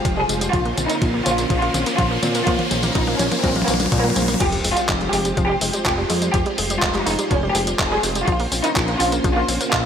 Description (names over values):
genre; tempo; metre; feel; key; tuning
italo disco; 124 BPM; 4/4; straight; F minor; A4 = 445 Hz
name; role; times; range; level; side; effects
rich studio violin section; melody; 0.0-9.9 s; Bb3 to Ab4; -23 LUFS; equal; tape echo
string machine, full ensemble; sustained chords; 0.0-9.9 s; Ab3 to C5; -26 LUFS; equal; ensemble chorus
riser and sub drop; sound effects; 0.0-6.3 s; none; -28 LUFS; left 1 dB; none
analog pluck; arpeggios; 0.1-9.8 s; F3 to C4; -27 LUFS; left 2 dB; chorus, vintage 12-bit sampler grit, tape echo
fat analog bass; bass; 0.1-9.9 s; F1 to Bb2; -25 LUFS; equal; none
detuned 8-bit digital drum machine; drums; 0.1-9.8 s; crash cymbal, handclaps, hi-hat, tambourine, toms; -24 LUFS; equal; gated reverb
electronic kick drum; drums; 0.1-9.8 s; none; -24 LUFS; equal; none
room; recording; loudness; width
moderate lush hall reverb, RT60 2.2 s; none; -17 LUFS; side -8 dB against mid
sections
0.0-4.4 A section; 4.4-9.9 B section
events
drum fill 0.0-4.4; riser 0.0-4.4; impact 4.4-6.3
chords
0.0 Fmadd9; 0.5 Bbmadd9; 4.4 Fmadd9; 8.3 Bbmadd9